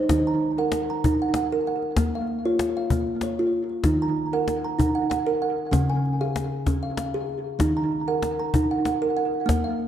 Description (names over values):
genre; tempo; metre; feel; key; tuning
world meditative, meditative tuned percussion; 96 BPM; 3/4; straight; Eb minor; A4 = 438 Hz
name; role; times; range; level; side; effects
kalimba; arpeggios; 0.0-9.9 s; Db3 to Bb5; -23 LUFS; right 1 dB; tape echo
cajon; percussion; 0.1-9.9 s; none; -26 LUFS; left 2 dB; none
room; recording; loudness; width
wet recital hall reverb, RT60 1.6 s, small room reverb; dark, warm production; -22 LUFS; side -10 dB against mid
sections
0.1-9.9 A section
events
none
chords
0.1 Ebm; 2.0 Bbm; 3.8 Ebm; 5.7 Db; 7.6 Ebm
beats
| 0.11 0.73 1.35 | 1.98 2.60 3.23 | 3.85 4.47 5.10 | 5.72 6.35 6.97 | 7.59 8.22 8.84 | 9.47